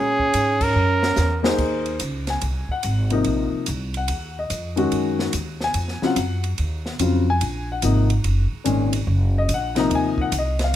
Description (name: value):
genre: modal jazz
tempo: 144 BPM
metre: 4/4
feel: swing 66% on 8ths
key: Eb dorian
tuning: A4 = 440 Hz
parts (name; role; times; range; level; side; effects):
- breathy trumpet; melody; 0.0-1.5 s; Ab4 to Bb4; -20 LUFS; right 2 dB; none
- growling alto saxophone; second line; 0.0-1.4 s; Db4; -25 LUFS; right 3 dB; none
- upright bass; bass; 0.0-10.8 s; Gb1 to Bb2; -23 LUFS; equal; none
- open jazz drum kit; drums; 0.2-10.8 s; crash cymbal, hi-hat, kick drum, ride cymbal, snare drum; -29 LUFS; right 1 dB; none
- warm grand piano; accompaniment; 1.4-10.8 s; Bb2 to Bb5; -23 LUFS; left 4 dB; none
room: light reverb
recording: close, detailed microphones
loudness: -19 LUFS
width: side -12 dB against mid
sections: 0.0-1.6 A section; 1.6-10.8 B section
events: band accent 0.5; drum fill 0.8-1.6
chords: 0.0 Gb9; 1.6 Ebm69